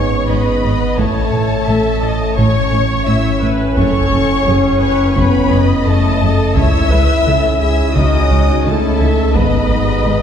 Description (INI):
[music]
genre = cinematic, hybrid orchestral and electronic film score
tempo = 86 BPM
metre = 4/4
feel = straight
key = F# dorian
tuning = A4 = 439 Hz
[part]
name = warm symphonic violin section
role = melody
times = 0.0-10.2 s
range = A5 to E6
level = -23 LUFS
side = left 3 dB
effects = none
[part]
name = warm symphonic violin section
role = second line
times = 0.0-10.2 s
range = A4 to E5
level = -21 LUFS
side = left 3 dB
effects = none
[part]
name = rich symphonic viola section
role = accompaniment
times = 0.0-10.2 s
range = E4 to E5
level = -23 LUFS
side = equal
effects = none
[part]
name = dark French horn section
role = sustained chords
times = 0.0-10.2 s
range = A3 to E4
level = -20 LUFS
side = left 2 dB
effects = none
[part]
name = warm trombone section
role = sustained chords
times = 0.0-10.2 s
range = G#2 to D#4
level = -20 LUFS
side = right 1 dB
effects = none
[part]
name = round analog bass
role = riff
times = 0.0-10.2 s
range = C#2 to A2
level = -19 LUFS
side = left 1 dB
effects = none
[part]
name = saturated sub bass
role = bass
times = 0.0-10.2 s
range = F#1 to C#2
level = -21 LUFS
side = equal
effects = none
[part]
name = dark symphonic double bass section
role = bass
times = 0.3-10.1 s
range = F#1 to C#2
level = -22 LUFS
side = right 2 dB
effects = none
[part]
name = warm studio cello section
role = bass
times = 0.3-10.1 s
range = F#2 to C#3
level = -22 LUFS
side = right 2 dB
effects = none
[part]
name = taiko ensemble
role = drums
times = 1.0-10.0 s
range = none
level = -24 LUFS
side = equal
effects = none
[part]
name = riser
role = sound effects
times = 9.9-10.2 s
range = none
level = -29 LUFS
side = right 1 dB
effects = none
[sound]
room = wet concert hall reverb, RT60 2.1 s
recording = heard from further back in the room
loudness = -11 LUFS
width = side -8 dB against mid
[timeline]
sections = 0.0-10.2 A section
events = none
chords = 0.0 G#m; 1.0 A; 3.8 F#m; 6.6 C#m; 9.4 G#m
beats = 0.29 | 0.98 1.68 2.38 3.08 | 3.77 4.47 5.17 5.87 | 6.57 7.26 7.96 8.66 | 9.36 10.05